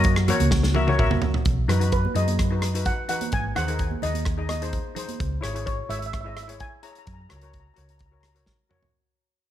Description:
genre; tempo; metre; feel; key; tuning
calypso; 128 BPM; 4/4; straight; B major; A4 = 439 Hz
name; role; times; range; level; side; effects
steel pan; melody; 0.0-8.4 s; B4 to A#5; -32 LUFS; right 1 dB; digital delay
steel pan; accompaniment; 0.0-8.9 s; D#4 to E5; -29 LUFS; left 4 dB; none
hollow-body short-scale fingered electric bass; bass; 0.0-8.5 s; G#1 to F#2; -25 LUFS; equal; none
loose indie drum kit; drums; 0.0-8.9 s; hi-hat, kick drum, rim click, snare drum, toms; -27 LUFS; equal; none
congas; percussion; 0.3-5.2 s; none; -31 LUFS; right 6 dB; none
room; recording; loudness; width
light reverb; none; -22 LUFS; side -12 dB against mid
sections
0.0-1.5 A section; 1.5-8.9 B section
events
drum fill 0.5-1.5, 8.5-8.9; fade-out 1.5-8.9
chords
0.0 F#; 1.5 B; 3.3 G#7; 5.2 C#m; 7.1 F#

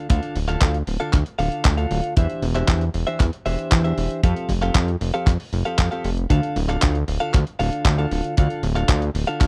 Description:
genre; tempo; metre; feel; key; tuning
italo disco; 116 BPM; 4/4; straight; D minor; A4 = 442 Hz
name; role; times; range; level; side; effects
direct-recorded clean electric guitar; stabs; 0.0-9.5 s; D3 to F5; -28 LUFS; equal; subtle chorus, tape echo
fat analog bass; bass; 0.1-9.5 s; D1 to F2; -25 LUFS; equal; none
dusty soul sampler-style drum kit; drums; 0.1-9.5 s; handclaps, hi-hat; -30 LUFS; equal; small room ambience
kick drum; drums; 0.1-9.5 s; none; -20 LUFS; equal; small room ambience
room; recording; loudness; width
little or no reverb; dry, close 1970s-style studio recording; -21 LUFS; mono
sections
0.0-9.5 A section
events
none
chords
0.0 Dm; 2.2 Cadd9/E; 4.2 Fadd9; 6.3 Dm

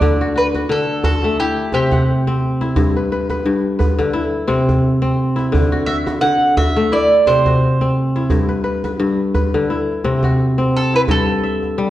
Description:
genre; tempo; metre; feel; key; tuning
west african traditional, West African string and xylophone music; 87 BPM; 4/4; swing 56% on 16ths; unclear; A4 = 440 Hz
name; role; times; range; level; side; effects
mandolin; melody; 0.0-11.9 s; G4 to F#5; -17 LUFS; right 2 dB; none
kora; arpeggios; 0.0-11.9 s; G2 to F#5; -16 LUFS; left 1 dB; none
djembe; percussion; 0.0-11.8 s; none; -21 LUFS; right 1 dB; none
room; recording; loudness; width
wet recital hall reverb, RT60 1.4 s; worn, warbling old tape, cassette tape, warbly pitch drift; -14 LUFS; side -14 dB against mid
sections
0.0-11.1 A section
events
none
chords
0.0 D; 1.4 C; 2.8 G; 4.2 C; 5.5 D; 6.9 C; 8.3 G; 9.7 C; 11.1 N.C.

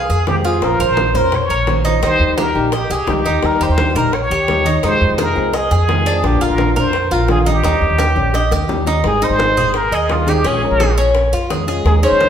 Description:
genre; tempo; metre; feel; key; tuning
latin, Cuban son and guajira; 171 BPM; 4/4; straight; unclear; A4 = 440 Hz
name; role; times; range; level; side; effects
trumpet with plunger mute; melody; 0.0-12.3 s; F4 to Db5; -18 LUFS; equal; none
Cuban tres; arpeggios; 0.0-12.3 s; Db4 to Eb5; -19 LUFS; right 1 dB; none
upright bass; bass; 0.0-12.3 s; Ab1 to F2; -18 LUFS; equal; none
bongos; percussion; 0.1-12.3 s; none; -25 LUFS; left 3 dB; none
congas; percussion; 0.1-12.3 s; none; -25 LUFS; right 2 dB; none
flamenco guitar; accompaniment; 0.3-12.3 s; C3 to C5; -21 LUFS; left 3 dB; none
room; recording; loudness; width
wet large studio reverb, RT60 1.2 s; band playing live in one room; -13 LUFS; side -8 dB against mid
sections
0.0-9.0 A section; 9.0-12.3 B section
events
drum fill 8.3-9.0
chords
0.0 Fmadd9; 0.6 Bbmadd9; 2.0 Eb; 4.8 Fm7; 6.2 Bb; 7.6 Eb7; 9.0 Abmaj7; 10.4 Bbm7

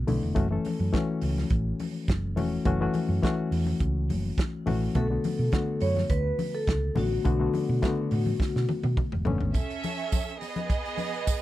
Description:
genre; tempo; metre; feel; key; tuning
disco; 104 BPM; 4/4; straight; F# minor; A4 = 439 Hz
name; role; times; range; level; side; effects
reed electric piano; accompaniment; 0.0-9.6 s; C#3 to A4; -29 LUFS; left 3 dB; none
hollow-body short-scale fingered electric bass; bass; 0.0-9.5 s; E1 to B2; -28 LUFS; right 1 dB; none
warm soul drum kit; drums; 0.1-11.4 s; hi-hat, kick drum, snare drum, toms; -30 LUFS; right 1 dB; none
congas; percussion; 0.1-11.1 s; none; -35 LUFS; left 2 dB; none
vibraphone with medium mallets; melody; 5.0-8.9 s; F#4 to C#5; -31 LUFS; left 2 dB; none
clear studio violin section; second line; 9.5-11.4 s; B3 to E5; -31 LUFS; right 5 dB; none
tambourine; percussion; 9.6-11.4 s; none; -41 LUFS; right 23 dB; none
room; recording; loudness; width
little or no reverb; none; -25 LUFS; side -15 dB against mid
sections
0.0-9.5 A section; 9.5-11.4 B section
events
drum fill 8.4-9.5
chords
0.4 F#m7; 5.0 Bm7; 9.5 A; 10.4 G#m

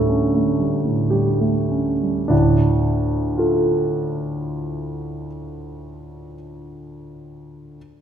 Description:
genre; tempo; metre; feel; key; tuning
classical, romantic character piece for solo piano; 46-61 BPM; 3/4; rubato; D minor; A4 = 440 Hz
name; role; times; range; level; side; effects
warm grand piano; solo; 0.0-7.8 s; D2 to C#5; -19 LUFS; right 1 dB; none
room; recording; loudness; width
wet recital hall reverb, RT60 1.5 s; heard from further back in the room; -17 LUFS; side -8 dB against mid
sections
0.0-2.3 A section; 2.3-5.5 B section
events
slowing down 0.0-2.3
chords
0.0 A7/D; 2.3 Dm

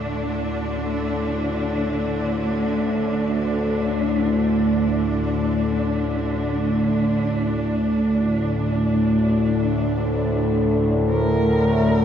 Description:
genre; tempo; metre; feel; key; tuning
dark ambient drone; free time; none; none; unclear; A4 = 440 Hz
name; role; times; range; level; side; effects
warm studio cello section; sustained chords; 0.0-12.0 s; D2 to Bb4; -24 LUFS; equal; none
analog drone; drone; 0.0-12.0 s; D2 to A2; -20 LUFS; equal; chorus
room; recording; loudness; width
wet huge ambient reverb, RT60 7.0 s; dreamy mix soaked in reverb; -19 LUFS; side -9 dB against mid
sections
0.0-12.0 A section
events
fade-in on cello section 0.0-12.0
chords
0.0 D5; 7.6 Bbmaj7/D

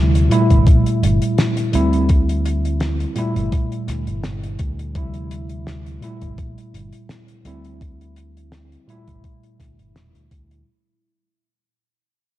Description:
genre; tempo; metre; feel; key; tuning
vaporwave; 84 BPM; 4/4; swing 55% on 16ths; G dorian; A4 = 440 Hz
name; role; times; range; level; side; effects
tine electric piano; accompaniment; 0.0-10.7 s; Bb2 to E4; -21 LUFS; equal; medium stereo tremolo, wide subtle chorus, analog delay
fingered electric bass; bass; 0.0-10.6 s; E1 to D2; -21 LUFS; equal; tube saturation
damped 70s drum kit; drums; 0.2-10.6 s; hi-hat, snare drum; -26 LUFS; equal; small room ambience
electronic kick drum; drums; 0.5-10.5 s; none; -16 LUFS; equal; small room ambience
room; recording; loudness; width
light reverb, small room ambience; dark, warm production; -16 LUFS; side -14 dB against mid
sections
0.0-10.7 A section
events
fade-out 0.0-10.7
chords
0.3 Gm69; 1.7 D9sus4; 3.2 Gm69; 5.0 Dm11; 6.0 Gm69; 7.5 D9sus4; 8.9 Gm69

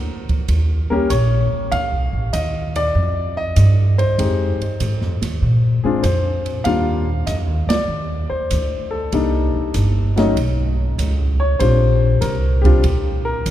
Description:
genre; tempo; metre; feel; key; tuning
jazz piano trio; 97 BPM; 4/4; swing 69% on 8ths; Bb major; A4 = 443 Hz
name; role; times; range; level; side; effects
warm baby grand piano; melody; 0.0-13.5 s; Gb3 to F5; -21 LUFS; left 2 dB; none
upright bass; bass; 0.0-13.5 s; G1 to Bb2; -18 LUFS; equal; none
open jazz drum kit; drums; 0.3-13.5 s; hi-hat, kick drum, ride cymbal, snare drum; -26 LUFS; right 2 dB; none
room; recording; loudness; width
wet cathedral reverb, RT60 4.7 s; recorded in a church or concert hall; -16 LUFS; side -12 dB against mid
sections
0.0-13.5 A section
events
band accent 7.6-7.9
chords
0.5 Eb7; 1.7 Dm7; 4.2 Fm7; 5.4 Bb7(no3); 6.7 Ebmaj7(no3); 9.1 Cm7; 10.4 Bsus2; 11.6 Bb6

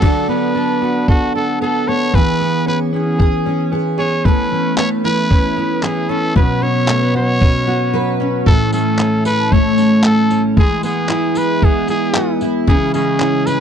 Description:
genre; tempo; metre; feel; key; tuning
acoustic pop; 114 BPM; 4/4; swing 55% on 16ths; unclear; A4 = 437 Hz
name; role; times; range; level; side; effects
growling trumpet; melody; 0.0-13.6 s; F#4 to C#5; -20 LUFS; equal; none
picked steel-string acoustic guitar; accompaniment; 0.0-13.6 s; A2 to B4; -16 LUFS; left 1 dB; double-tracked left and right
direct-recorded clean electric guitar; arpeggios; 0.0-13.6 s; E3 to A4; -22 LUFS; right 6 dB; none
dusty soul sampler-style drum kit; drums; 0.0-13.6 s; crash cymbal, handclaps, kick drum, tambourine; -15 LUFS; equal; none
room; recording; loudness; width
light reverb; dry, close 1970s-style studio recording; -13 LUFS; side -8 dB against mid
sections
0.0-8.5 A section; 8.5-13.6 B section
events
break 7.9-8.5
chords
0.0 D6; 2.1 E6; 4.2 Aadd9; 6.4 Bsus2; 8.5 A; 10.6 E; 12.7 C#m

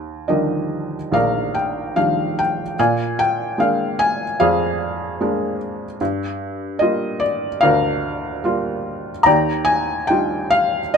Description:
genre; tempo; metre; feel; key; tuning
classical, lyrical solo piano; 73 BPM; 4/4; rubato; Eb major; A4 = 438 Hz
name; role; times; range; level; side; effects
felt-muted upright piano; solo; 0.0-11.0 s; Bb1 to Bb5; -17 LUFS; equal; none
room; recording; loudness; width
light reverb; close, detailed microphones; -17 LUFS; side -6 dB against mid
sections
0.0-11.0 A section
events
none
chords
0.0 Ebmaj9; 2.8 Bb7; 6.0 Gm7; 9.3 Ebmaj9

